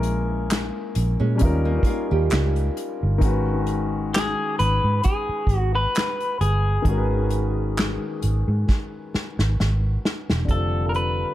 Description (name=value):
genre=R&B, neo-soul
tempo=66 BPM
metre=4/4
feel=swing 54% on 16ths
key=G# dorian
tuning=A4 = 441 Hz
part: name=warm concert grand piano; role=accompaniment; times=0.0-11.3 s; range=D3 to B4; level=-28 LUFS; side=left 3 dB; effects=analog delay
part: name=vintage muted fingered electric bass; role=bass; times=0.0-11.2 s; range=E1 to A#2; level=-22 LUFS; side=equal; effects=none
part: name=unplugged drum kit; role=drums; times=0.0-11.2 s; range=handclaps, hi-hat, kick drum, snare drum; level=-24 LUFS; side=equal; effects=none
part: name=nylon-string guitar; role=second line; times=1.2-3.2 s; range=G#3 to G4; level=-29 LUFS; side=right 7 dB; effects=analog delay
part: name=electric guitar through a small old amp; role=melody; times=4.1-11.3 s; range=G#4 to B4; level=-25 LUFS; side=left 1 dB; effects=analog delay
room=light reverb, studio ambience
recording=echo-heavy mix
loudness=-20 LUFS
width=side -14 dB against mid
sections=0.0-10.5 A section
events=drum fill 8.7-10.5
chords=0.0 A#m7b5; 1.4 D#7; 3.2 G#m7; 10.5 F6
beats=0.48 1.39 2.30 | 3.21 4.12 5.03 5.94 | 6.85 7.76 8.67 9.57 | 10.48